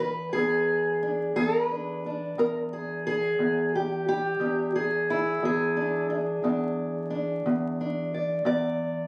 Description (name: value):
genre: acoustic country blues, solo or duo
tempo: 59 BPM (dotted quarters)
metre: 12/8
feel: straight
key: E mixolydian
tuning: A4 = 440 Hz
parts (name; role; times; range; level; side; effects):
- fingerpicked steel-string acoustic guitar; solo; 0.0-9.1 s; E2 to D5; -27 LUFS; equal; none
room: moderate studio reverb, RT60 0.6 s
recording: recorded on a phone in the room, studio ambience, vinyl crackle, compression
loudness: -27 LUFS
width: mono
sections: 0.0-9.1 A section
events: none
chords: 0.0 E7